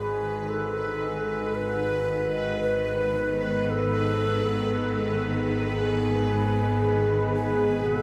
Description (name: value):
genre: dark ambient drone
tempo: 57 BPM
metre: 4/4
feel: straight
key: G# phrygian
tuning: A4 = 441 Hz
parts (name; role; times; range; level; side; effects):
- breathy bright long shakuhachi; melody; 0.0-8.0 s; G#4 to B4; -29 LUFS; equal; tape echo
- rich studio cello section; sustained chords; 0.0-8.0 s; G#2 to B3; -31 LUFS; equal; none
- overtone-sweeping drone; drone; 0.0-8.0 s; G#1 to G#2; -33 LUFS; equal; chorus, built-in reverb
- bubbling stepped-filter texture; texture; 0.0-8.0 s; B4; -37 LUFS; equal; chorus, built-in reverb
room: wet huge ambient reverb, RT60 8.4 s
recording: none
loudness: -26 LUFS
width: mono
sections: 0.0-8.0 A section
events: none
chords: 0.0 G#m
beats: 0.49 1.54 2.60 | 3.65 4.70 5.75 6.81 | 7.86